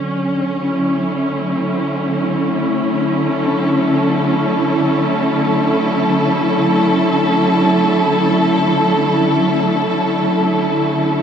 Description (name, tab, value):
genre	ambient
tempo	free time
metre	none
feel	none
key	D major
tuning	A4 = 439 Hz
part	warm studio string section	sustained chords	0.0-11.2 s	D3 to A4	-14 LUFS	equal	none
part	bowed-like drone	drone	0.5-11.2 s	D3 to A3	-24 LUFS	left 2 dB	built-in reverb, phaser
room	wet huge ambient reverb, RT60 8.1 s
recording	dark, warm production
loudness	-14 LUFS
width	side -8 dB against mid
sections	0.0-11.2 A section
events	none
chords	0.0 Dmaj9